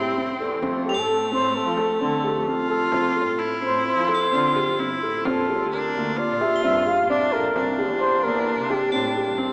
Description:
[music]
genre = contemporary instrumental, chamber music in an uneven meter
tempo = 131 BPM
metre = 5/4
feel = straight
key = F major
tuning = A4 = 441 Hz
[part]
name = breathy flugelhorn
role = melody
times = 0.0-9.5 s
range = E4 to F5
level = -26 LUFS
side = equal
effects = none
[part]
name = bright viola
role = second line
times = 0.0-9.5 s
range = A3 to F4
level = -29 LUFS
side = equal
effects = none
[part]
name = felt-muted upright piano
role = arpeggios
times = 0.0-9.5 s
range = Bb3 to A4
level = -29 LUFS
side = equal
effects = none
[part]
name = crotales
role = texture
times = 0.0-9.5 s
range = D7 to A7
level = -38 LUFS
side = equal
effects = none
[part]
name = clear double bass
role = bass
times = 0.1-9.5 s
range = G1 to F3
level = -34 LUFS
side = equal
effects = none
[part]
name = frame drum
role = percussion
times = 0.6-9.3 s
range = none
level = -42 LUFS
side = equal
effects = none
[sound]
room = wet cathedral reverb, RT60 5.6 s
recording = in a vast, echoing space, small speaker sound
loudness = -22 LUFS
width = mono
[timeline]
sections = 0.0-9.5 A section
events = none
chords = 0.0 C; 0.6 Fmaj7; 5.3 Bb69; 7.6 C7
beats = 0.17 | 0.63 1.09 1.55 2.01 2.47 | 2.92 3.38 3.85 4.32 4.78 | 5.25 5.72 6.18 6.64 7.10 | 7.55 8.01 8.47 8.93 9.38

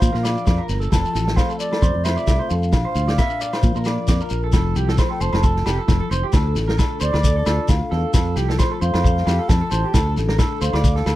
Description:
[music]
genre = highlife guitar band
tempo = 133 BPM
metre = 4/4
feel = swing 55% on 16ths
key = F major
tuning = A4 = 439 Hz
[part]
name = baroque flute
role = melody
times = 0.0-11.2 s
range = D5 to A5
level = -26 LUFS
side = equal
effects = none
[part]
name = nylon-string guitar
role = accompaniment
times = 0.0-11.2 s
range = Bb2 to Bb4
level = -28 LUFS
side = left 6 dB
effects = none
[part]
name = electric guitar through a small old amp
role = arpeggios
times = 0.0-11.2 s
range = G4 to E5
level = -28 LUFS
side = right 6 dB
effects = slapback echo
[part]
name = fingered electric bass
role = bass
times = 0.0-11.2 s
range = F1 to Bb2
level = -21 LUFS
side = equal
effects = none
[part]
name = vintage drum kit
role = drums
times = 0.0-11.2 s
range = kick drum, snare drum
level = -20 LUFS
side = equal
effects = none
[part]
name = shekere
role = percussion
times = 0.0-11.2 s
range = none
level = -26 LUFS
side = left 2 dB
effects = none
[part]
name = agogo bells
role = percussion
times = 0.2-11.2 s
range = none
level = -33 LUFS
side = left 6 dB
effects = none
[sound]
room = little or no reverb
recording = dry, close 1970s-style studio recording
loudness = -17 LUFS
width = side -15 dB against mid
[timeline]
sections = 0.0-4.5 A section; 4.5-11.2 B section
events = flute solo 4.5-11.2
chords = 0.0 Bb; 0.9 F; 2.7 Bb; 4.5 F; 6.3 Dm; 8.1 F; 9.9 Dm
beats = 0.01 0.47 | 0.92 1.37 1.82 2.27 | 2.73 3.18 3.63 4.08 | 4.53 4.98 5.43 5.88 | 6.34 6.79 7.24 7.69 | 8.14 8.59 9.04 9.49 | 9.94 10.39 10.84

